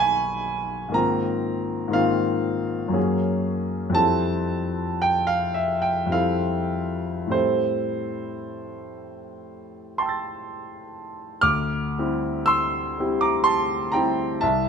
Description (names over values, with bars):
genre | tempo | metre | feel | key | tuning
classical, impressionist solo piano | 39-64 BPM | 3/4 | rubato | D minor from 4.0 s | A4 = 441 Hz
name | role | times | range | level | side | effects
clear concert grand piano | solo | 0.0-14.7 s | B1 to A6 | -22 LUFS | equal | none
room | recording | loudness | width
moderate recital hall reverb, RT60 1.3 s | close, detailed microphones | -21 LUFS | side -6 dB against mid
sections
0.0-11.4 A section; 11.4-14.7 B section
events
none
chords
0.0 Bmaj7; 1.0 Ab69; 3.0 Gbmaj9; 4.0 Fmaj9; 7.3 Am7; 11.4 Dm11